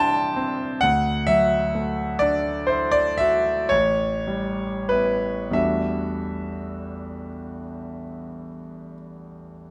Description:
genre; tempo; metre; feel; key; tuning
classical, impressionist solo piano; 30-44 BPM (dotted quarters); 9/8; rubato; E minor; A4 = 440 Hz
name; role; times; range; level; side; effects
clear concert grand piano; solo; 0.0-9.7 s; A1 to C6; -24 LUFS; equal; none
room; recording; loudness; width
moderate scoring stage reverb, RT60 1.6 s; close, detailed microphones; -23 LUFS; mono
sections
0.0-9.7 A section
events
none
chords
0.0 Cmaj9; 0.8 Dadd9; 3.7 A9; 5.6 Em11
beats
| 0.83 2.22 3.72 | 5.56 7.27 8.95

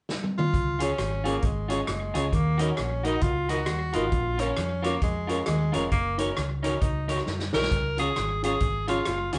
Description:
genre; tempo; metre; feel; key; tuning
ska; 134 BPM; 4/4; swing 60% on 8ths; unclear; A4 = 441 Hz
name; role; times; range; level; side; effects
vintage drum kit; drums; 0.1-9.4 s; hi-hat, kick drum, rim click, snare drum, toms; -32 LUFS; equal; slapback echo
breathy tenor saxophone; melody; 0.4-9.4 s; Ab3 to Bb4; -32 LUFS; equal; none
hollow-body short-scale fingered electric bass; bass; 0.5-9.4 s; F1 to Gb2; -32 LUFS; equal; none
electric guitar at the edge of break-up; accompaniment; 0.8-9.4 s; Eb4 to Eb5; -35 LUFS; equal; slapback echo
dark upright piano; stabs; 0.8-9.4 s; Db4 to Bb4; -35 LUFS; equal; none
room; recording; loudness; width
moderate studio reverb, RT60 0.8 s; band playing live in one room, nothing above 10.3 kHz; -27 LUFS; mono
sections
0.5-9.4 A section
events
drum fill 0.1-0.5, 7.3-7.7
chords
0.0 N.C.; 0.5 Db; 2.3 Ebm; 4.1 Bbm; 5.9 Gb6; 7.7 Db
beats
0.09 | 0.54 0.98 1.43 1.88 | 2.33 2.78 3.23 3.67 | 4.12 4.57 5.02 5.47 | 5.92 6.37 6.82 7.27 | 7.71 8.16 8.61 9.06

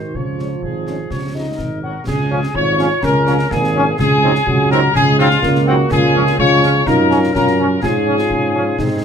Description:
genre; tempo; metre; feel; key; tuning
military-style march for wind band; 125 BPM; 2/4; straight; Db major; A4 = 444 Hz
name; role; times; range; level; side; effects
warm euphonium; second line; 0.0-9.0 s; Eb3 to F4; -22 LUFS; right 4 dB; none
warm woodwind section; second line; 0.0-9.0 s; Eb4 to Db5; -23 LUFS; left 2 dB; none
mellow tuba; bass; 0.0-9.0 s; Ab1 to Ab2; -18 LUFS; right 2 dB; none
concert bass drum, concert snare drum and clash cymbals; drums; 0.1-9.0 s; none; -24 LUFS; left 1 dB; none
mellow trumpet section; melody; 0.4-9.0 s; Eb4 to Db5; -20 LUFS; left 2 dB; none
warm French horn section; accompaniment; 0.4-9.0 s; F3 to F4; -21 LUFS; left 5 dB; none
mellow wooden piccolo; second line; 1.3-8.8 s; Eb5 to Db6; -22 LUFS; left 3 dB; none
warm trombone section; sustained chords; 2.3-8.6 s; F3 to Db4; -20 LUFS; right 1 dB; none
room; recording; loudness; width
light reverb; none; -13 LUFS; side -7 dB against mid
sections
0.0-2.1 A section; 2.1-9.0 A section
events
none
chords
0.1 Db; 4.0 Ab7/Db; 5.9 Db; 6.9 Gbmaj7; 7.8 Db/Ab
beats
| 0.14 0.63 | 1.11 1.59 | 2.07 2.55 | 3.03 3.51 | 3.99 4.47 | 4.95 5.43 | 5.91 6.39 | 6.87 7.35 | 7.83 8.31 | 8.79

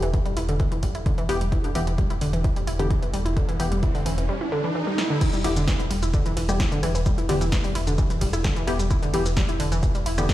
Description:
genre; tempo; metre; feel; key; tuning
driving peak-time techno; 130 BPM; 4/4; straight; E minor; A4 = 440 Hz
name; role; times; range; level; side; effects
wide unison pluck; riff; 0.0-10.3 s; D3 to E4; -27 LUFS; equal; overdrive, cassette tape, sidechain pumping, ping-pong delay
filtered dub chord stab; stabs; 0.0-10.3 s; E3 to G4; -31 LUFS; left 2 dB; analog chorus, sidechain pumping, ping-pong delay
saturated sub bass; bass; 0.0-10.3 s; E1; -26 LUFS; equal; tube saturation, sidechain pumping, low-pass filter
punchy analog drum machine; drums; 0.0-10.3 s; crash cymbal, hi-hat, ride cymbal, rim click, shaker, snare drum; -32 LUFS; equal; sidechain pumping on hats, sidechain pumping on cymbals, sidechain pumping on perc
electronic kick drum; drums; 0.1-10.3 s; none; -24 LUFS; equal; none
riser; sound effects; 2.7-5.2 s; none; -32 LUFS; right 2 dB; none
room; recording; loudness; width
little or no reverb; played on a big sound system in a bare room, stone room reverb; -21 LUFS; side -14 dB against mid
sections
0.0-5.2 A section; 5.2-10.3 B section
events
riser 2.7-5.2; drum fill 5.0; drop 5.2-10.3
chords
0.0 Em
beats
0.14 0.60 1.06 | 1.52 1.98 2.44 2.90 | 3.37 3.83 4.29 4.75 | 5.21 5.67 6.14 6.60 | 7.06 7.52 7.98 8.44 | 8.90 9.37 9.83 10.29

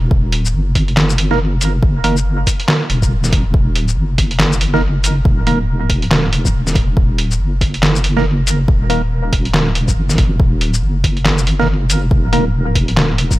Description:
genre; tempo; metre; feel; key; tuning
deep dubstep; 140 BPM; 4/4; swing 59% on 16ths, half-time; Eb minor; A4 = 444 Hz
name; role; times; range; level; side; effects
deep soft wobble bass; bass; 0.0-13.4 s; Eb1 to Gb1; -16 LUFS; equal; chorus
electronic kick drum; drums; 0.1-13.4 s; none; -15 LUFS; equal; none
trip hop sampler-style drum kit; drums; 0.3-13.4 s; handclaps, hi-hat, shaker, snare drum; -18 LUFS; equal; none
percussive organ stab; stabs; 1.3-2.2, 4.7-5.6, 8.2-9.0, 11.6-12.4 s; Eb3 to Bb4; -22 LUFS; right 2 dB; chorus, phaser, dub echo
room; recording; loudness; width
digital ambience; none; -12 LUFS; side -17 dB against mid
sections
0.0-13.4 A section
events
none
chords
0.0 Eb5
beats
| 0.11 0.54 0.97 1.40 | 1.82 2.25 2.68 3.11 | 3.54 3.97 4.40 4.83 | 5.25 5.68 6.11 6.54 | 6.97 7.40 7.83 8.25 | 8.68 9.11 9.54 9.97 | 10.40 10.82 11.25 11.68 | 12.11 12.54 12.97

